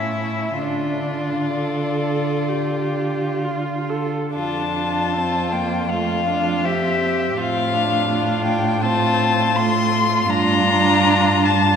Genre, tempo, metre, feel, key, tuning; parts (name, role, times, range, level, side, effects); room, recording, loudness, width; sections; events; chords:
classical, slow romantic movement for string quartet; 62-83 BPM; 4/4; rubato; D minor, F major from 4.3 s; A4 = 440 Hz
muted violin; melody; 0.0-11.8 s; D5 to C6; -22 LUFS; left 5 dB
muted violin; second line; 0.0-11.8 s; E4 to G4; -24 LUFS; left 1 dB
muted viola; accompaniment; 0.0-11.8 s; A3 to A4; -25 LUFS; right 3 dB
muted cello; bass; 0.0-11.8 s; F2 to D3; -23 LUFS; right 3 dB
wet cathedral reverb, RT60 4.3 s; recorded in a church or concert hall; -17 LUFS; side -7 dB against mid
0.0-4.3 A section; 4.3-11.8 B section
0.0 A; 0.6 Dm; 4.3 F; 7.4 F/A; 10.3 Gm7